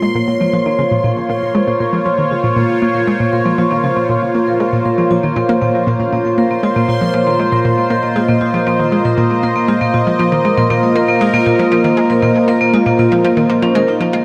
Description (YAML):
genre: ambient, sequencer-driven space music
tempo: 118 BPM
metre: 4/4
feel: straight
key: Bb minor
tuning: A4 = 440 Hz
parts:
  - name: sweeping resonant pad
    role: sustained chords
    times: 0.0-14.2 s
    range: Bb3 to Eb5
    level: -18 LUFS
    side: equal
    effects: chorus, phaser
  - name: vibraphone with medium hard mallets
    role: arpeggios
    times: 0.0-14.2 s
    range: F3 to Bb4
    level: -22 LUFS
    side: equal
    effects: delay
  - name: analog pluck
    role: riff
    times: 0.0-14.2 s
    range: Bb2 to F4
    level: -19 LUFS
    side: equal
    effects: chorus, delay
  - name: bubbling stepped-filter texture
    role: texture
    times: 0.0-14.2 s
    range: F4 to C6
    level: -26 LUFS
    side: equal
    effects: chorus, built-in reverb
room: wet huge ambient reverb, RT60 7.8 s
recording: none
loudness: -14 LUFS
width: mono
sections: 0.0-14.2 A section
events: fade-in on vibraphone 0.0-14.2; filter sweep on synth arpeggio sound 0.0-14.2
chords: 0.0 Bbm